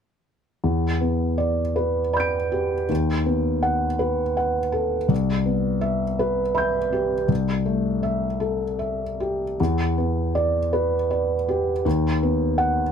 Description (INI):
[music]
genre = neoclassical minimalist piano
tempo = 81 BPM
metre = 3/4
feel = rubato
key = E minor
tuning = A4 = 440 Hz
[part]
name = felt-muted upright piano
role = solo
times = 0.6-12.9 s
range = C2 to D7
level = -20 LUFS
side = equal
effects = none
[sound]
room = light reverb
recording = none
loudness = -20 LUFS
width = side -7 dB against mid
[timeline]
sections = 0.6-9.6 A section; 9.6-12.9 B section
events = none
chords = 0.6 Em7; 2.9 B7/D#; 5.1 Cmaj7; 7.3 Am7/C; 9.6 Em7; 11.9 B/D#